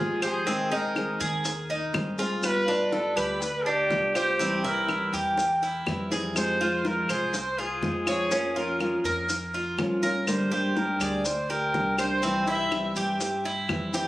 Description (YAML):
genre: latin, Cuban son and guajira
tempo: 123 BPM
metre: 4/4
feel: straight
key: unclear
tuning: A4 = 440 Hz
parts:
  - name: warm trumpet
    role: melody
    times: 0.0-13.0 s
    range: G4 to E5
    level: -30 LUFS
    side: equal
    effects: tape echo
  - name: nylon-string guitar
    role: accompaniment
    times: 0.0-14.1 s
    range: C3 to Ab4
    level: -30 LUFS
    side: left 1 dB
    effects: none
  - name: Cuban tres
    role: arpeggios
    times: 0.0-14.1 s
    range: C4 to D5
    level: -28 LUFS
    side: right 1 dB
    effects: none
  - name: upright bass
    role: bass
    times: 0.0-14.1 s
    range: Ab1 to G2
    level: -37 LUFS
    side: equal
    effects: none
  - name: bongos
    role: percussion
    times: 0.2-13.9 s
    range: none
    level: -35 LUFS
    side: left 3 dB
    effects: none
  - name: claves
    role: percussion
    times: 0.2-13.9 s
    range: none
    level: -33 LUFS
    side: left 1 dB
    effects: none
  - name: maracas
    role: percussion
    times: 0.2-14.1 s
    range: none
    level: -37 LUFS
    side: left 1 dB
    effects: none
room: moderate studio reverb, RT60 0.7 s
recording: recorded on a phone in the room, studio ambience, compression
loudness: -24 LUFS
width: side -16 dB against mid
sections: 0.0-14.1 A section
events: none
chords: 0.5 Abadd9; 2.4 G7; 4.4 C; 6.4 Fm; 8.3 Bbm/F; 10.3 Gm; 12.2 C